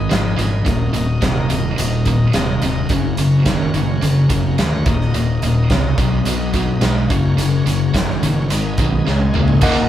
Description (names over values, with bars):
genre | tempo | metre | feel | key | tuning
classic rock | 107 BPM | 4/4 | straight | Eb minor | A4 = 440 Hz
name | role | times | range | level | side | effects
bright tonewheel organ | sustained chords | 0.0-9.9 s | Db4 to Eb5 | -29 LUFS | equal | slow rotary speaker, overdrive
sludgy distorted guitar | riff | 0.0-9.9 s | Eb2 to Bb3 | -19 LUFS | left 3 dB | overdrive
tight distorted guitar | riff | 0.0-9.9 s | Eb2 to Bb3 | -22 LUFS | right 4 dB | distortion
fuzz fingered electric bass | bass | 0.0-9.9 s | Eb1 to D2 | -21 LUFS | right 1 dB | overdrive
big rock drum kit | drums | 0.1-9.8 s | crash cymbal, hi-hat, kick drum, snare drum, toms | -21 LUFS | equal | none
reed electric piano | accompaniment | 9.6-9.9 s | Bb4 to Gb5 | -18 LUFS | equal | overdrive
room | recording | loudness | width
moderate studio ambience, RT60 0.4 s | band playing live in one room | -14 LUFS | side -11 dB against mid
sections
0.0-9.6 A section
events
drum fill 9.1-9.6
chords
0.0 Abm; 0.7 Ebm; 2.9 Gb; 4.9 Ebm; 6.0 B; 7.1 Gb; 8.5 Abm; 9.1 Dbadd9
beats
0.11 | 0.67 1.23 1.79 2.35 | 2.91 3.47 4.03 4.59 | 5.15 5.71 6.27 6.83 | 7.39 7.95 8.51 9.07 | 9.62